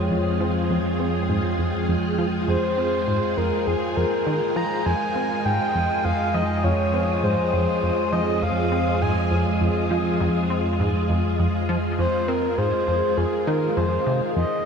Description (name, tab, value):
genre	ambient, sequencer-driven space music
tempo	101 BPM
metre	4/4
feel	straight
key	F minor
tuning	A4 = 440 Hz
part	string machine, full ensemble	sustained chords	0.0-14.7 s	G3 to Ab4	-25 LUFS	equal	phaser, ensemble chorus
part	analog drone	bass	0.0-14.7 s	F2	-27 LUFS	equal	chorus
part	wind-like tuned noise texture	texture	0.0-14.4 s	Eb5 to G5	-34 LUFS	left 1 dB	built-in reverb, lush chorus
part	plucky analog bass	riff	0.1-14.4 s	F2 to C4	-26 LUFS	equal	wide subtle chorus, ping-pong delay
part	breathy flute-like synth lead	melody	2.5-14.7 s	Ab4 to Bb5	-26 LUFS	left 1 dB	chorus, ping-pong delay
room	wet huge ambient reverb, RT60 8.1 s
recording	dreamy mix soaked in reverb, cassette tape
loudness	-20 LUFS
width	side -6 dB against mid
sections	0.0-14.4 A section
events	filter sweep on analog synth bass 0.0-14.4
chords	0.0 Fm